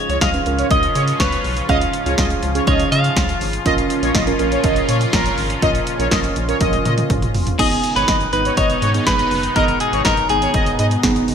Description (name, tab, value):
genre	synth-pop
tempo	122 BPM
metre	4/4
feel	straight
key	G# dorian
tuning	A4 = 442 Hz
part	clean electric guitar	melody	0.0-3.4, 7.6-11.0 s	G#4 to E#5	-20 LUFS	equal	phaser, digital delay
part	muted felt-like synth keys	accompaniment	0.0-11.3 s	B3 to B4	-23 LUFS	right 5 dB	chorus
part	sweeping resonant pad	sustained chords	0.0-11.3 s	G#2 to E#4	-24 LUFS	left 1 dB	chorus
part	analog synth brass	second line	0.1-10.9 s	A#4 to D#5	-23 LUFS	left 1 dB	chorus, digital delay
part	rubbery square bass	bass	0.1-11.3 s	F#1 to C#3	-22 LUFS	equal	none
part	punchy analog drum machine	drums	0.1-11.3 s	crash cymbal, hi-hat, kick drum, snare drum, toms	-21 LUFS	equal	none
room	moderate lush hall reverb, RT60 1.6 s, digital ambience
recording	bright 1980s-style digital production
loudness	-15 LUFS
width	side -7 dB against mid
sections	0.0-7.6 A section; 7.6-11.3 B section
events	drum fill 6.6-7.6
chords	0.0 C#; 3.7 A#m; 7.6 G#m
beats	0.21 0.71 1.20 | 1.69 2.18 2.67 3.17 | 3.66 4.15 4.64 5.13 | 5.62 6.12 6.61 7.10 | 7.59 8.08 8.57 9.07 | 9.56 10.05 10.54 11.03